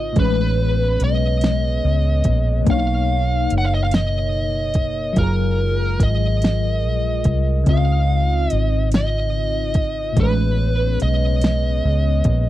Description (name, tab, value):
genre	slow six-eight R&B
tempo	48 BPM (dotted quarters)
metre	6/8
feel	straight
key	unclear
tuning	A4 = 442 Hz
part	smooth overdriven lead guitar	melody	0.0-12.5 s	Bb4 to Gb5	-24 LUFS	equal	slapback echo
part	FM electric piano with auto-pan	accompaniment	0.0-12.5 s	A2 to Eb5	-25 LUFS	left 3 dB	phaser
part	glass harmonica	sustained chords	0.0-12.5 s	Ab3 to Eb5	-31 LUFS	left 1 dB	none
part	vintage muted fingered electric bass	bass	0.0-12.5 s	Gb1 to C#2	-19 LUFS	equal	none
part	smooth R&B drum kit	drums	0.2-12.4 s	hi-hat, kick drum, snare drum	-19 LUFS	equal	overdrive
room	little or no reverb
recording	dry, close 1970s-style studio recording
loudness	-16 LUFS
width	side -14 dB against mid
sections	0.0-12.5 A section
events	none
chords	0.2 Amaj9; 2.7 Cbmaj9; 5.2 Gbmaj9; 7.7 Dbmaj9; 10.2 Amaj9